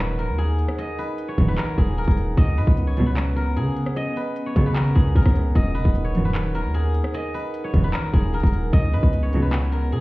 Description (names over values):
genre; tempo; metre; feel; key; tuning
hip hop, trap; 151 BPM; 4/4; half-time; Eb minor; A4 = 440 Hz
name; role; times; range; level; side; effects
steel-string zither; melody; 0.0-10.0 s; Ab4 to Eb5; -29 LUFS; left 1 dB; low-pass filter, digital delay
glass harmonica; sustained chords; 0.0-10.0 s; Cb4 to Gb5; -31 LUFS; equal; none
hard-hitting 808-style bass; bass; 0.0-10.0 s; Eb1 to Db3; -22 LUFS; equal; none
trap drum kit; drums; 0.2-10.0 s; handclaps, hi-hat, kick drum, rim click; -20 LUFS; equal; none
dark chamber string section; stabs; 1.4-9.5 s; Bb1 to Gb3; -26 LUFS; right 1 dB; digital delay
room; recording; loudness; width
small room reverb; heard muffled through a wall, stone room reverb, EQ; -19 LUFS; side -20 dB against mid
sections
0.0-10.0 A section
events
none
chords
0.0 Ebm; 2.4 Db7sus4; 5.6 Ebm; 8.7 Db7sus4